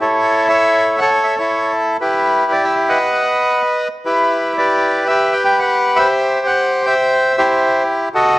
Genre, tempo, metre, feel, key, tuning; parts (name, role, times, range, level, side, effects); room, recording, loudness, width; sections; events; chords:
tango; 118 BPM; 4/4; rubato; E minor; A4 = 440 Hz
bandoneon; solo; 0.0-8.4 s; E4 to G5; -13 LUFS; equal
moderate recital hall reverb, RT60 1.9 s; worn, warbling old tape, cassette tape, warbly pitch drift; -13 LUFS; side -18 dB against mid
0.0-8.4 A section
0.0 A; 2.0 Em; 3.0 B; 4.0 Em; 6.1 C